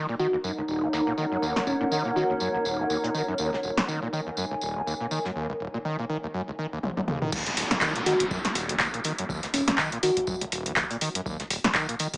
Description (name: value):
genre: acid house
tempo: 122 BPM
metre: 4/4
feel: swing 57% on 16ths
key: Eb minor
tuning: A4 = 438 Hz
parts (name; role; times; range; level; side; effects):
- overdriven acid bass; riff; 0.0-12.2 s; Eb1 to Eb3; -31 LUFS; equal; distortion, tube saturation, analog chorus, cassette tape, tape echo
- granular cloud pad; texture; 0.3-5.4 s; Eb4 to Ab5; -28 LUFS; equal; built-in reverb, sidechain pumping
- bell-like FM electric piano; melody; 0.2-2.5, 8.1-10.4 s; Db4 to Gb4; -28 LUFS; equal; chorus, dub echo
- damped 70s drum kit; drums; 0.2-12.1 s; hi-hat, snare drum, tambourine; -36 LUFS; equal; high-pass filter on hats, low-pass filter on hats, high-pass filter on snare, low-pass filter on snare, high-pass filter on perc, low-pass filter on perc, high-pass filter on room, low-pass filter on room
- punchy analog drum machine; drums; 1.6-3.9, 6.8-12.2 s; crash cymbal, handclaps, hi-hat, snare drum, toms; -26 LUFS; equal; none
- electronic kick drum; drums; 7.3-12.2 s; none; -39 LUFS; equal; overdrive
- downlifter; sound effects; 7.3-11.3 s; none; -33 LUFS; equal; none
room: wet small room reverb, RT60 0.5 s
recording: small speaker sound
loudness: -24 LUFS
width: side -25 dB against mid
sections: 0.0-7.3 A section; 7.3-12.2 B section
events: drum fill 6.8-7.3; drop 7.3-12.2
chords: 0.0 Ebm7; 7.3 N.C.